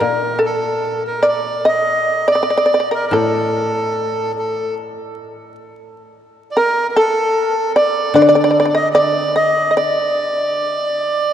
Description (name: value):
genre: japanese traditional, Japanese chamber music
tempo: 74 BPM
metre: 4/4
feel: rubato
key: unclear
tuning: A4 = 444 Hz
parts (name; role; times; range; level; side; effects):
- shamisen; melody; 0.0-11.3 s; A4 to Eb5; -17 LUFS; equal; none
- melodica; second line; 0.0-11.3 s; A4 to Eb5; -18 LUFS; right 1 dB; none
- koto; accompaniment; 0.0-10.6 s; A2 to D3; -21 LUFS; left 2 dB; none
room: wet cathedral reverb, RT60 5.5 s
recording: in a vast, echoing space, vinyl crackle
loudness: -14 LUFS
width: side -10 dB against mid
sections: 0.0-11.3 A section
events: none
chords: none